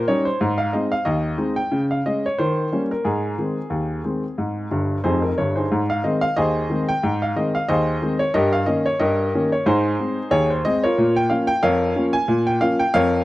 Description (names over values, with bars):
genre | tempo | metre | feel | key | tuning
ragtime piano | 91 BPM | 2/4 | swing 56% on 16ths | Ab major | A4 = 440 Hz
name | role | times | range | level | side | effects
clear upright piano | solo | 0.0-13.2 s | F1 to Ab5 | -18 LUFS | equal | none
room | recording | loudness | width
studio reverb | dry, close 1970s-style studio recording | -18 LUFS | side -17 dB against mid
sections
0.0-5.7 A section; 5.7-13.2 A section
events
upright piano fill 4.7-5.7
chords
0.4 Ab; 1.7 Db5; 2.4 Eb7; 3.0 Ab; 8.3 Eb7/G; 9.7 Ab; 11.0 Bbm